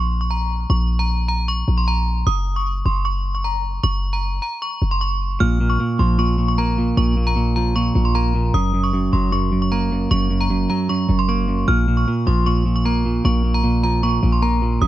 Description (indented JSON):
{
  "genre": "hip hop",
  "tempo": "153 BPM",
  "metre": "4/4",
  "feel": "half-time",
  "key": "Bb minor",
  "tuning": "A4 = 442 Hz",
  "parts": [
    { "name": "metallic FM bell", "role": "melody", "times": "0.0-14.9 s", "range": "Bb5 to F6", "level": "-24 LUFS", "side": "equal", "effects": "chorus, phaser, low-pass filter, ping-pong delay" },
    { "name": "warm 808-style bass", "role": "bass", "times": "0.0-14.9 s", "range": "Gb1 to Bb1", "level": "-20 LUFS", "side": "equal", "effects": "none" },
    { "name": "clean electric guitar", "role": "accompaniment", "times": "5.4-14.9 s", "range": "Gb2 to Bb3", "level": "-20 LUFS", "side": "right 2 dB", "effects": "low-pass filter" }
  ],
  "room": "light reverb",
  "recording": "none",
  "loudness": "-17 LUFS",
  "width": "side -14 dB against mid",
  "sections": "0.0-14.9 A section",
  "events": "none",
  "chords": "0.0 Bbm; 2.3 Gb5; 5.4 Bb5; 8.5 Gb; 11.7 Bb5"
}